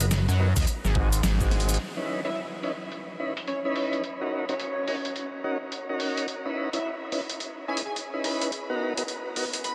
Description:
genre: glitch hop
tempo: 107 BPM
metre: 4/4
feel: swing 62% on 16ths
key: C# dorian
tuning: A4 = 440 Hz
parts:
  - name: tonewheel organ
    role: stabs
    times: 0.0-9.4 s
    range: B3 to B4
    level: -33 LUFS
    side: equal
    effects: slow rotary speaker, sidechain pumping, low-pass filter, tape echo
  - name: boom bap sampler-style drum kit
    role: drums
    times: 0.0-9.7 s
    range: hi-hat, snare drum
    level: -35 LUFS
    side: equal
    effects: overdrive, low-pass filter on hats, low-pass filter on snare
  - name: cabasa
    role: percussion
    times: 0.0-1.8 s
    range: none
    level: -40 LUFS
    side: equal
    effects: none
  - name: gritty driven synth bass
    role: bass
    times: 0.3-1.8 s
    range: G#1 to F#2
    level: -26 LUFS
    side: equal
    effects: none
  - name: electronic kick drum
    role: drums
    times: 0.6-1.5 s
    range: none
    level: -28 LUFS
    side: equal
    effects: overdrive
  - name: sync lead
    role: melody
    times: 2.2-9.7 s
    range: C#5 to B5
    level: -37 LUFS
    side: equal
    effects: analog chorus, tape echo
room: wet huge ambient reverb, RT60 6.9 s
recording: dreamy mix soaked in reverb, lossy compression artefacts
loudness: -28 LUFS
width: mono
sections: 0.0-1.8 A section; 1.8-9.7 B section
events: band accent 1.2; drum fill 1.5; filter sweep on drum 1.8-9.7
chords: 0.0 Bmaj7; 0.7 G#7; 1.8 C#m9; 4.0 D#m7; 6.3 C#m9; 8.5 Bmaj7

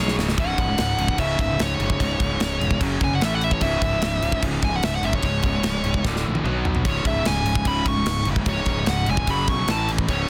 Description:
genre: heavy metal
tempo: 148 BPM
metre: 4/4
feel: straight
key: C# minor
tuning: A4 = 439 Hz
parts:
  - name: bluesy overdriven lead guitar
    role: melody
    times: 0.0-10.3 s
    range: C#5 to C#6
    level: -28 LUFS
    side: equal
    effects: distortion
  - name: distorted electric guitar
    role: riff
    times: 0.0-10.3 s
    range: C#2 to B3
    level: -31 LUFS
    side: equal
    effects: distortion
  - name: scooped high-gain guitar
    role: riff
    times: 0.0-10.3 s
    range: C#2 to B3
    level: -31 LUFS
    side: equal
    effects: distortion
  - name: fuzz fingered electric bass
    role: bass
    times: 0.0-10.3 s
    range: C#1 to B1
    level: -29 LUFS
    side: equal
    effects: overdrive
  - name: modern studio drum kit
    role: drums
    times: 0.1-10.2 s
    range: crash cymbal, kick drum, snare drum, toms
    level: -27 LUFS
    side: equal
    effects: none
room: little or no reverb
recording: dense, heavily limited modern master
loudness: -22 LUFS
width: mono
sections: 0.4-10.3 A section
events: drum fill 0.0-0.4, 6.1-6.9; lead electric guitar solo 0.4-10.3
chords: 0.4 C#5; 2.8 F#5; 3.2 A5; 3.6 C#m; 6.1 D5; 6.5 B5; 6.9 C#5; 9.3 F#5; 9.7 A5

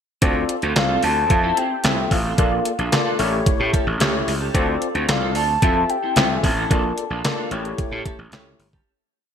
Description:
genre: early-eighties boogie funk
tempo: 111 BPM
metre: 4/4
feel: straight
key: D minor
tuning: A4 = 440 Hz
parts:
  - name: barky tine electric piano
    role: accompaniment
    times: 0.2-8.7 s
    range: A3 to E5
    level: -25 LUFS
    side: left 3 dB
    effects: analog chorus
  - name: clean electric guitar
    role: riff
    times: 0.2-8.9 s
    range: C4 to C5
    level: -29 LUFS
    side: right 3 dB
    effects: analog chorus
  - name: gritty slap bass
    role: bass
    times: 0.2-8.8 s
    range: G1 to A2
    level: -23 LUFS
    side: right 1 dB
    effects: overdrive
  - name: detuned 8-bit digital drum machine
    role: drums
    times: 0.2-8.9 s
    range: handclaps, hi-hat, kick drum, snare drum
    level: -21 LUFS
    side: equal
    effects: overdrive, gated reverb
  - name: soft octave-layered synth lead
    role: melody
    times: 0.8-7.5 s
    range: F5 to A5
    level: -23 LUFS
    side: left 1 dB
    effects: chorus, phaser, ping-pong delay
room: moderate lush hall reverb, RT60 2.4 s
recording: bright 1980s-style digital production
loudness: -18 LUFS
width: side -8 dB against mid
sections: 0.2-8.9 verse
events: fade-out 6.7-8.9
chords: 0.2 Dm7; 1.3 Fmaj7; 2.4 Bbmaj7; 3.2 A7; 4.5 Dm7; 5.6 Fmaj7; 6.7 Bbmaj7; 7.5 A7

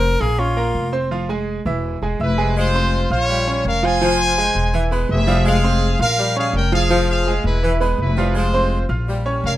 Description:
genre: latin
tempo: 166 BPM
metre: 4/4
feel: straight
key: F harmonic minor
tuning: A4 = 440 Hz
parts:
  - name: bright tenor saxophone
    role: melody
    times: 0.0-0.9 s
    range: F4 to Bb4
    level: -21 LUFS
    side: left 1 dB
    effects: none
  - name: bright baby grand piano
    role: accompaniment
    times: 0.0-9.6 s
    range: E3 to F6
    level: -22 LUFS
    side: right 3 dB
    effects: none
  - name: upright bass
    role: bass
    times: 0.0-9.6 s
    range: E1 to Bb1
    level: -20 LUFS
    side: equal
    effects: none
  - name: brilliant trumpet section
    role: melody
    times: 2.2-9.5 s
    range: E4 to Ab5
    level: -20 LUFS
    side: equal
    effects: none
  - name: bright saxophone section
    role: second line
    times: 2.6-9.5 s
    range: E3 to G#3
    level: -24 LUFS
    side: left 2 dB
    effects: none
room: light reverb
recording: rough home demo mix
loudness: -16 LUFS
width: side -14 dB against mid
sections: 0.0-2.6 A section; 2.6-9.6 B section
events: tenor saxophone solo 0.0-2.6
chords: 0.4 Bbm; 1.1 E; 2.6 Fm; 3.3 Bbm; 4.0 Fm; 4.7 E; 5.5 Fm; 6.2 Bbm; 6.9 Fm; 7.6 E; 8.4 Fm

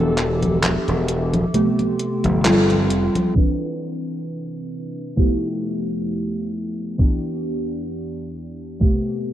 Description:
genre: vaporwave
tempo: 66 BPM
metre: 4/4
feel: swing 55% on 16ths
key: C major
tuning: A4 = 435 Hz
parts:
  - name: fuzz lead guitar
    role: melody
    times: 0.0-2.4 s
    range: A4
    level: -30 LUFS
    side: equal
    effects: distortion, tape echo
  - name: warbly lo-fi synth keys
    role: accompaniment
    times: 0.0-9.3 s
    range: C3 to B4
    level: -22 LUFS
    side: equal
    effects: wide subtle chorus, analog delay
  - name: warbly tape-like pad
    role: sustained chords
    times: 0.1-9.3 s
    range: E2 to D6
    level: -36 LUFS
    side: equal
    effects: chorus, built-in reverb
  - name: gritty slap bass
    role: bass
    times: 0.0-3.1 s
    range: E1 to G1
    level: -22 LUFS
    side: equal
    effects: overdrive
  - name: detuned 8-bit digital drum machine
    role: drums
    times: 0.2-3.6 s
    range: congas, crash cymbal, handclaps, hi-hat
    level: -22 LUFS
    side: equal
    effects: none
  - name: electronic kick drum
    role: drums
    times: 3.4-9.0 s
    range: none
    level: -17 LUFS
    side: equal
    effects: none
room: light reverb, digital ambience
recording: rough home demo mix, cassette tape, low-pass filter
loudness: -18 LUFS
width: side -12 dB against mid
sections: 0.0-3.4 A section; 3.4-9.3 B section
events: break 0.0-3.4; band accent 2.5-2.9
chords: 0.0 Em7; 1.5 Am9; 2.5 G9sus4; 3.4 Cmaj9; 5.2 Fmaj9#11; 7.0 Em7; 8.8 Am9

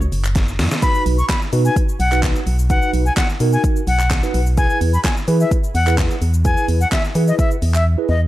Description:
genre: dance-pop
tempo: 128 BPM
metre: 4/4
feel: straight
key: B major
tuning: A4 = 440 Hz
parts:
  - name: hollow square pluck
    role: melody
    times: 0.0-0.6 s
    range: C#5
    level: -43 LUFS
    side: equal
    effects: none
  - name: organ-like FM bass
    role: bass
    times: 0.0-8.3 s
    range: F#1 to E3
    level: -16 LUFS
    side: equal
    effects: sidechain pumping
  - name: deep house drum kit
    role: drums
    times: 0.0-7.8 s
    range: handclaps, hi-hat, kick drum, shaker, snare drum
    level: -19 LUFS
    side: equal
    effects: overdrive
  - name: group handclap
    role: percussion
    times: 0.4-7.0 s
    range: none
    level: -37 LUFS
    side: right 5 dB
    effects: none
  - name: breathy bright silver concert flute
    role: melody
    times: 0.8-8.2 s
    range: D#5 to C#6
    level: -22 LUFS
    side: left 2 dB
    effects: tape echo
  - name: mellow tine electric piano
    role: accompaniment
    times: 0.8-8.1 s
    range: D#4 to B4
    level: -24 LUFS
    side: right 2 dB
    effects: medium stereo tremolo, sidechain pumping
room: little or no reverb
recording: dark, warm production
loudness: -15 LUFS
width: side -15 dB against mid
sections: 0.8-8.3 A section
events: drum fill 0.4-0.8; silent gap 7.9-8.3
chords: 0.0 F#5; 0.8 B; 4.6 E

